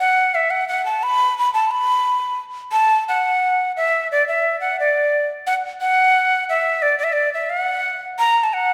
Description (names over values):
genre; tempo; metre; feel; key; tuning
andean folk; 88 BPM; 2/4; straight; unclear; A4 = 440 Hz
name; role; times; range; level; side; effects
breathy quena; solo; 0.0-8.7 s; D5 to B5; -19 LUFS; equal; none
room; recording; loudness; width
wet scoring stage reverb, RT60 1.8 s; recorded in a church or concert hall; -19 LUFS; mono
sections
0.0-2.7 A section; 2.7-8.7 B section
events
none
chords
none